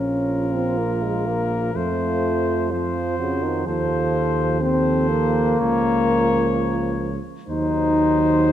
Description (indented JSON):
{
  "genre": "classical, brass quintet",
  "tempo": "63 BPM",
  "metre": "4/4",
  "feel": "rubato",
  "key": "Bb minor",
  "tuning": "A4 = 439 Hz",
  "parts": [
    { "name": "bright trumpet", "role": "melody", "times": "0.0-8.5 s", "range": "Bb4 to Db5", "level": "-30 LUFS", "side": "left 6 dB", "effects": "none" },
    { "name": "dark flugelhorn", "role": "second line", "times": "0.0-8.5 s", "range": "F4 to C5", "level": "-28 LUFS", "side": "right 5 dB", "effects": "none" },
    { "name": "warm French horn", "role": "accompaniment", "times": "0.0-8.5 s", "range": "Db3 to Eb4", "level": "-21 LUFS", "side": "left 2 dB", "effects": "none" },
    { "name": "warm trombone", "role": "accompaniment", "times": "0.0-8.5 s", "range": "F3 to Gb3", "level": "-30 LUFS", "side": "right 2 dB", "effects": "none" },
    { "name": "mellow tuba", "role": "bass", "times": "0.0-8.5 s", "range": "Bb1 to F2", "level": "-25 LUFS", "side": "right 3 dB", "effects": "none" }
  ],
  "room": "moderate concert hall reverb, RT60 1.9 s",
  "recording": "dark, warm production",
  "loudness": "-19 LUFS",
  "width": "side -11 dB against mid",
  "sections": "0.0-8.5 A section",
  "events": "none",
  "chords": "0.0 Bb5; 1.8 F; 3.7 F7/Eb; 5.6 Bbm/Db; 7.5 Cdim/Eb"
}